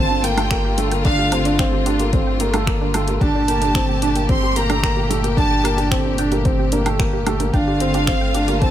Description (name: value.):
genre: piano and strings electronica.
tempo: 111 BPM.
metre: 4/4.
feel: straight.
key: G minor.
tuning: A4 = 440 Hz.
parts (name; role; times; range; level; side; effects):
clear studio violin section; melody; 0.0-8.7 s; F5 to C6; -23 LUFS; right 1 dB; none.
rich symphonic string section; sustained chords; 0.0-8.7 s; Bb2 to G4; -26 LUFS; left 2 dB; sidechain pumping.
wide unison pluck; arpeggios; 0.0-8.7 s; D4 to G5; -28 LUFS; right 4 dB; sidechain pumping, ping-pong delay.
felt-muted upright piano; riff; 0.0-8.7 s; A3 to D4; -22 LUFS; right 1 dB; ping-pong delay.
warm sub bass; bass; 0.0-8.7 s; G1; -23 LUFS; equal; sidechain pumping.
deep house drum kit; drums; 0.2-8.7 s; finger snaps, hi-hat, woodblock; -27 LUFS; equal; none.
electronic kick drum; drums; 0.5-8.7 s; none; -21 LUFS; equal; none.
room: light reverb, small room ambience.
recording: none.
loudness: -16 LUFS.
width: side -11 dB against mid.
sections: 0.0-8.7 A section.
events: none.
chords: 0.0 Dm/G; 3.2 Gmadd9; 7.5 Dm/G.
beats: 0.51 | 1.05 1.59 2.13 2.67 | 3.21 3.75 4.29 4.83 | 5.38 5.92 6.46 7.00 | 7.54 8.08 8.62.